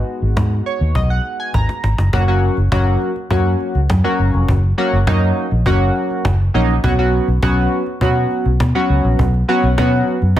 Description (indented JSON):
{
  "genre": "dance-pop",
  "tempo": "102 BPM",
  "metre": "4/4",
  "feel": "straight",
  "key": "F# major",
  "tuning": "A4 = 440 Hz",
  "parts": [
    { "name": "chorused retro synth keys", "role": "accompaniment", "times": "0.0-10.4 s", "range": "F#3 to A#5", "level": "-18 LUFS", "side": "equal", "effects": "none" },
    { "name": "vintage muted fingered electric bass", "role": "bass", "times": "0.2-10.4 s", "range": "E#1 to B2", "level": "-15 LUFS", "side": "equal", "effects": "none" },
    { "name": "cajon", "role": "drums", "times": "0.4-10.4 s", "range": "none", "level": "-22 LUFS", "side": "equal", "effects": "none" }
  ],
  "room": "light reverb, small room ambience",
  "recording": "none",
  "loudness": "-14 LUFS",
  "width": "side -12 dB against mid",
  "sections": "0.0-2.1 A section; 2.1-10.4 B section",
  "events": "synth keys fill 0.4-2.1; drum fill 1.5-2.1",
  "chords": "0.0 G#m7; 2.1 F#; 6.8 Bsus2",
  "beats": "0.37 0.96 1.54 | 2.13 2.72 3.31 3.90 | 4.49 5.07 5.66 6.25 | 6.84 7.43 8.02 8.60 | 9.19 9.78 10.37"
}